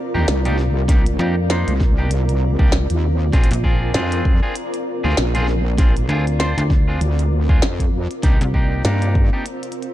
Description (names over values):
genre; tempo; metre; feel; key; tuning
glitch hop; 98 BPM; 4/4; swing 58% on 16ths; C minor; A4 = 441 Hz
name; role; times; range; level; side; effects
granular cloud pad; texture; 0.0-9.9 s; C4 to D5; -26 LUFS; equal; built-in reverb, sidechain pumping
clean electric guitar; stabs; 0.1-9.4 s; Bb3 to C5; -26 LUFS; equal; sidechain pumping, digital delay
wobble bass; bass; 0.1-9.3 s; Bb1 to G2; -19 LUFS; equal; chorus, tube saturation
glitchy drum kit; drums; 0.3-9.9 s; hi-hat, snare drum; -24 LUFS; equal; overdrive
electronic kick drum; drums; 0.9-9.3 s; none; -16 LUFS; equal; none
slap-like FM bass; bass; 1.2-8.8 s; Bb1 to F2; -19 LUFS; equal; tube saturation
room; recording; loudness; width
little or no reverb; dark, warm production; -15 LUFS; side -14 dB against mid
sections
0.0-9.9 A section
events
none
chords
0.0 Cm7; 3.3 Bb7; 8.2 Cm7